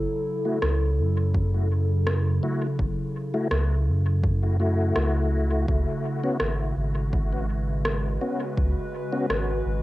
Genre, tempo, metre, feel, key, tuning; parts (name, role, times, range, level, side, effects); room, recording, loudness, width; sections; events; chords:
ambient dub; 83 BPM; 4/4; straight; F# minor; A4 = 440 Hz
warbly tape-like pad; sustained chords; 0.0-9.8 s; C#3 to B4; -29 LUFS; equal; chorus, built-in reverb, cassette tape
soft dub sub bass; bass; 0.0-9.8 s; F#1 to F#2; -24 LUFS; equal
tonewheel organ; stabs; 0.5-9.3 s; A3 to F#4; -29 LUFS; left 2 dB; chorus vibrato, slow rotary speaker, cassette tape, dub echo
electronic rim click; drums; 0.6-9.4 s; -30 LUFS; equal; overdrive, cassette tape, dub echo
electronic kick drum; drums; 1.3-8.7 s; -28 LUFS; equal; overdrive, cassette tape
digital ambience; home recording on cassette; -22 LUFS; side -17 dB against mid
0.0-9.8 A section
0.0 F#m7; 5.7 C#7sus4